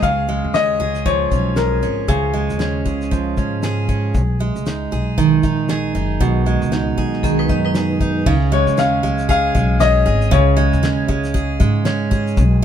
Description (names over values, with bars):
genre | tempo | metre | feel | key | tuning
acoustic pop | 117 BPM | 4/4 | swing 60% on 16ths | Db mixolydian | A4 = 440 Hz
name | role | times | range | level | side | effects
clear upright piano | melody | 0.0-3.1, 8.5-12.1 s | Ab4 to F5 | -19 LUFS | left 6 dB | none
picked steel-string acoustic guitar | accompaniment | 0.0-12.6 s | Cb3 to Ab4 | -19 LUFS | right 5 dB | none
upright bass | bass | 0.0-12.6 s | Gb1 to Ab2 | -20 LUFS | left 1 dB | none
cloth-damped thuddy drum kit | drums | 0.0-12.6 s | crash cymbal, kick drum, shaker, snare drum | -21 LUFS | left 1 dB | none
vibraphone with hard mallets | second line | 7.2-8.2 s | Cb4 to Eb5 | -24 LUFS | left 1 dB | none
room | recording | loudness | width
little or no reverb | minimal, uncompressed stereo recording | -15 LUFS | side -9 dB against mid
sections
0.0-8.3 A section; 8.3-12.6 B section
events
none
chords
0.0 Db; 4.1 Abm; 8.3 Db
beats
| 0.03 0.54 1.06 1.57 | 2.09 2.60 3.12 3.63 | 4.15 4.66 5.18 5.69 | 6.21 6.72 7.23 7.75 | 8.26 8.78 9.29 9.80 | 10.31 10.83 11.34 11.86 | 12.37